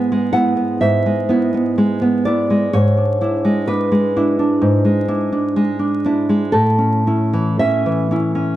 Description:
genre	romantic piece for solo classical guitar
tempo	54-65 BPM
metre	4/4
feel	rubato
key	unclear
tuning	A4 = 439 Hz
part	nylon-string guitar	solo	0.0-8.6 s	G#2 to F#5	-14 LUFS	right 1 dB	none
room	moderate spring reverb, RT60 1.3 s, small room ambience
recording	vinyl crackle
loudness	-14 LUFS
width	side -13 dB against mid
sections	0.0-8.6 A section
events	none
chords	0.0 E/G#; 2.7 E7/G#; 6.5 A

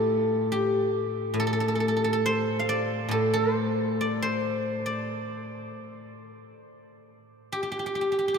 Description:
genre	chinese traditional, Chinese solo plucked strings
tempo	69 BPM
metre	4/4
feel	rubato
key	unclear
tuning	A4 = 440 Hz
part	guzheng	solo	0.0-8.4 s	A2 to F5	-25 LUFS	equal	none
room	wet cathedral reverb, RT60 6.0 s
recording	in a vast, echoing space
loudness	-24 LUFS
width	side -6 dB against mid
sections	0.0-8.4 A section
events	none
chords	none

